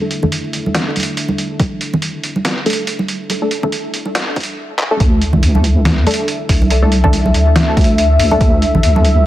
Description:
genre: deep dubstep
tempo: 141 BPM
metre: 4/4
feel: swing 57% on 16ths, half-time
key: unclear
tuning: A4 = 439 Hz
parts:
  - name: dark analog pad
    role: sustained chords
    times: 0.0-9.3 s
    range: D4 to E5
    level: -21 LUFS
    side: left 1 dB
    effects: chorus
  - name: filtered dub chord stab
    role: stabs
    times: 0.0-8.4 s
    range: A3 to A4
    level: -21 LUFS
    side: left 1 dB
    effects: chorus, dub echo
  - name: trip hop sampler-style drum kit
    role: drums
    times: 0.1-9.1 s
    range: handclaps, hi-hat, snare drum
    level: -20 LUFS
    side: equal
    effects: high-pass filter on hats, high-pass filter on snare
  - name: congas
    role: percussion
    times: 0.2-9.0 s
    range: none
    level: -21 LUFS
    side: right 2 dB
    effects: dub echo
  - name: electronic kick drum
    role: drums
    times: 1.6-8.5 s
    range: none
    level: -14 LUFS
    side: equal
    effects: none
  - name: deep soft wobble bass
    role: bass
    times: 5.0-9.3 s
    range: C2 to D2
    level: -12 LUFS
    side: equal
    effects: chorus
room: light reverb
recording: dense, heavily limited modern master, vinyl crackle, high-pass filter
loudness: -12 LUFS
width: side -14 dB against mid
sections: 0.0-5.0 A section; 5.0-9.3 B section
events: build-up 0.0-5.0; filter sweep on synth stab 0.0-5.0; filter sweep on analog synth pad 0.0-5.0; drum fill 4.8; drop 5.0-9.3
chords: 0.0 D5

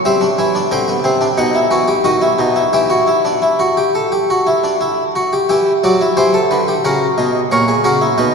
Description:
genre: classical, baroque-style 3-part fugue for harpsichord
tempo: 89 BPM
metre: 4/4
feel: straight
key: E minor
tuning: A4 = 440 Hz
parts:
  - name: harpsichord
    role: solo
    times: 0.1-8.3 s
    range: A#2 to G5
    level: -12 LUFS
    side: equal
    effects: none
room: wet cathedral reverb, RT60 4.9 s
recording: minimal, uncompressed stereo recording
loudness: -12 LUFS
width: side -5 dB against mid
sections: 0.0-5.5 A section; 5.5-8.3 B section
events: none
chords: 0.1 C; 1.4 B; 2.7 Em; 6.8 F#7

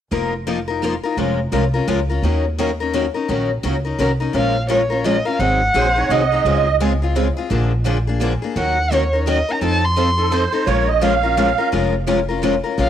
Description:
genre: acoustic string swing (jazz manouche)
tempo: 171 BPM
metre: 3/4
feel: swing 61% on 8ths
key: Bb minor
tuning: A4 = 439 Hz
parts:
  - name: picked steel-string acoustic guitar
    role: accompaniment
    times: 0.1-12.9 s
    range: Db3 to Bb4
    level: -21 LUFS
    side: left 7 dB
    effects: cassette tape
  - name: picked steel-string acoustic guitar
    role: accompaniment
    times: 0.1-12.5 s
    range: Db3 to Bb4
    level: -25 LUFS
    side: right 8 dB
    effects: cassette tape
  - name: upright bass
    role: bass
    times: 0.1-12.9 s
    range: F1 to F2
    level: -21 LUFS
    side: equal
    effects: transformer saturation
  - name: dark violin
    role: melody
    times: 4.4-6.3, 8.6-10.5, 12.8-12.9 s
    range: Db5 to C6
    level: -20 LUFS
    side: right 1 dB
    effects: cassette tape
  - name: musette accordion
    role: second line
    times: 5.8-6.8, 10.2-11.7 s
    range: A4 to F5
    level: -19 LUFS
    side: right 8 dB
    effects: cassette tape
room: light reverb, studio reverb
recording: home recording on cassette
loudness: -16 LUFS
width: side -10 dB against mid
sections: 0.1-4.3 A section; 4.3-12.8 B section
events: none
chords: 0.1 F7sus4; 1.2 Bbm7/F; 2.2 Ebm7; 4.3 Bbm7; 5.4 Ab7; 6.5 Dbmaj7; 7.5 Bb7; 8.6 Ebm7; 9.6 F7; 10.7 Bbm7

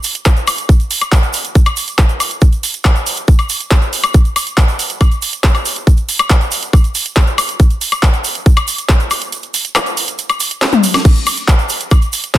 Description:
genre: trance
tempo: 139 BPM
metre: 4/4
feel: straight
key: none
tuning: none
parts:
  - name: drum and bass drum kit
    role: drums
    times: 0.0-12.4 s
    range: crash cymbal, handclaps, hi-hat, snare drum, toms, woodblock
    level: -15 LUFS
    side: left 1 dB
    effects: overdrive
  - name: tube shaker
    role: percussion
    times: 0.0-12.4 s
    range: none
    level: -25 LUFS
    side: right 6 dB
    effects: none
  - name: electronic kick drum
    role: drums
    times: 0.3-12.4 s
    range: none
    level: -9 LUFS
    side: equal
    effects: none
room: light reverb, digital ambience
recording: dense, heavily limited modern master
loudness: -11 LUFS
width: side -14 dB against mid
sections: 0.0-12.4 A section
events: kick drops out 9.3-11.1; drum fill 10.6-11.1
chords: none

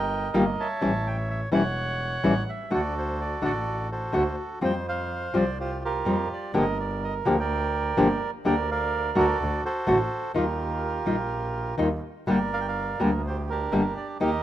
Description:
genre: tango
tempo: 126 BPM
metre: 4/4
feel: rubato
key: G minor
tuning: A4 = 441 Hz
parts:
  - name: bandoneon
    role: melody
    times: 0.0-14.4 s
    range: D4 to A5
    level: -28 LUFS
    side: right 3 dB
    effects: none
  - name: rich double bass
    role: bass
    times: 0.0-14.4 s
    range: E1 to F2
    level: -31 LUFS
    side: right 1 dB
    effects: none
  - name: nylon-string guitar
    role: accompaniment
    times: 0.3-14.3 s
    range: D3 to G4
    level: -24 LUFS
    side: left 1 dB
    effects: none
room: light reverb, studio ambience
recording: rough home demo mix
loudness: -24 LUFS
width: side -12 dB against mid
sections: 0.0-14.4 A section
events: none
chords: 0.0 Eb/G; 0.8 A7; 2.7 D; 4.6 Fsus2; 6.5 Gm7; 8.5 Gm/D (rootless); 9.4 D; 10.4 Ebadd9; 12.3 Gm

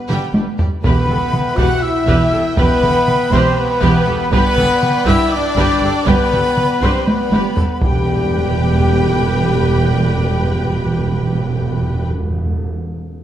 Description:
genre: cinematic, epic orchestral film score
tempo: 241 BPM (eighths)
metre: 7/8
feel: straight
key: E minor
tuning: A4 = 439 Hz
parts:
  - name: warm symphonic violin section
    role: melody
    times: 0.0-12.1 s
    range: B4 to G5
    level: -28 LUFS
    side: left 3 dB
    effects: none
  - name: mellow French horn section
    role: sustained chords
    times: 0.0-12.1 s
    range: G3 to F#4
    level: -20 LUFS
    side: left 4 dB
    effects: none
  - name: warm symphonic violin section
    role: second line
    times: 0.1-12.1 s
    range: D4 to G5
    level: -29 LUFS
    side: equal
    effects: none
  - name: rich symphonic viola section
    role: accompaniment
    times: 0.1-12.1 s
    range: G3 to B4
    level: -25 LUFS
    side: right 1 dB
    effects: none
  - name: clear symphonic double bass section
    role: bass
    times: 0.1-12.1 s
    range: E1 to G1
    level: -21 LUFS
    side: right 4 dB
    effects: none
  - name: dark symphonic cello section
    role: bass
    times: 0.1-12.1 s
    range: E2 to G2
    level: -21 LUFS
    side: right 2 dB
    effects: none
  - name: solo taiko drums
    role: drums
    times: 0.1-8.8 s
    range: none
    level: -19 LUFS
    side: equal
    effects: none
  - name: bright silver concert flute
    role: second line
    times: 0.8-12.1 s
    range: G5 to F#6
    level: -24 LUFS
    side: equal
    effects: none
  - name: mellow trumpet section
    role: stabs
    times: 0.8-12.1 s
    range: G4 to F#5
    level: -22 LUFS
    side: right 1 dB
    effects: none
  - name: timpani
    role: percussion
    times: 0.8-1.5, 7.8-12.7 s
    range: E2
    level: -21 LUFS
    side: equal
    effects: none
room: wet scoring stage reverb, RT60 1.7 s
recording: none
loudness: -13 LUFS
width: side -11 dB against mid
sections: 0.8-7.8 A section; 7.8-11.3 B section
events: drum fill 0.1-0.8, 7.1-7.8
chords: 0.0 G; 0.8 Em; 4.3 G; 7.8 Em

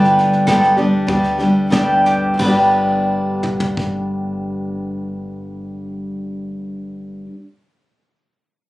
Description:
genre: acoustic folk duo or small band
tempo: 87-103 BPM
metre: 4/4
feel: straight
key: G major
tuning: A4 = 438 Hz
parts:
  - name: bowl-back mandolin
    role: second line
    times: 0.0-7.3 s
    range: G4 to B4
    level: -25 LUFS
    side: equal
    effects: none
  - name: picked steel-string acoustic guitar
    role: accompaniment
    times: 0.0-7.4 s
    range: G2 to G4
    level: -16 LUFS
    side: equal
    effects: none
  - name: upright bass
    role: bass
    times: 0.0-7.3 s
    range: G1 to D2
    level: -30 LUFS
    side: right 1 dB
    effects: none
  - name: soft brush drum kit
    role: drums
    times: 0.0-3.9 s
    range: crash cymbal, kick drum, snare drum, toms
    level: -24 LUFS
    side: equal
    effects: none
room: light reverb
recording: recorded on a phone in the room, studio reverb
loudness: -14 LUFS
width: side -18 dB against mid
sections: 0.0-2.4 A section; 2.4-7.9 B section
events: slowing down 0.0-2.4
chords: 0.0 G

